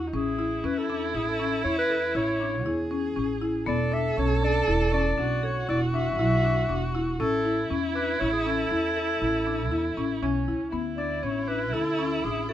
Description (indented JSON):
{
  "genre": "contemporary instrumental, chamber music in an uneven meter",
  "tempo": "119 BPM",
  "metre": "7/4",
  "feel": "straight",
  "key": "A major",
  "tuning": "A4 = 440 Hz",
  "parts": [
    { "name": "dark viola", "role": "second line", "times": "0.0-12.5 s", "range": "C#4 to A4", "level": "-30 LUFS", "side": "right 3 dB", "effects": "none" },
    { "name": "buzzing marimba with hard mallets", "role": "arpeggios", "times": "0.0-12.5 s", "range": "B3 to A4", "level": "-29 LUFS", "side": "left 3 dB", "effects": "none" },
    { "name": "upright bass", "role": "bass", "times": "0.0-12.5 s", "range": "E1 to E2", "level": "-30 LUFS", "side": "right 2 dB", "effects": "none" },
    { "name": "clear clarinet", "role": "melody", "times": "0.1-12.5 s", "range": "F#4 to E5", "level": "-29 LUFS", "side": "left 1 dB", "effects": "none" }
  ],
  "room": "light reverb",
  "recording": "none",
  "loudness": "-24 LUFS",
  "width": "side -11 dB against mid",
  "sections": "0.0-10.7 A section; 10.7-12.5 B section",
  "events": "none",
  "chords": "0.1 Amaj7; 3.7 E7sus4; 7.2 A",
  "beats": "| 0.14 0.64 1.15 1.65 2.16 2.66 3.17 | 3.67 4.17 4.68 5.18 5.69 6.19 6.70 | 7.20 7.71 8.21 8.71 9.22 9.72 10.23 | 10.73 11.24 11.74 12.24"
}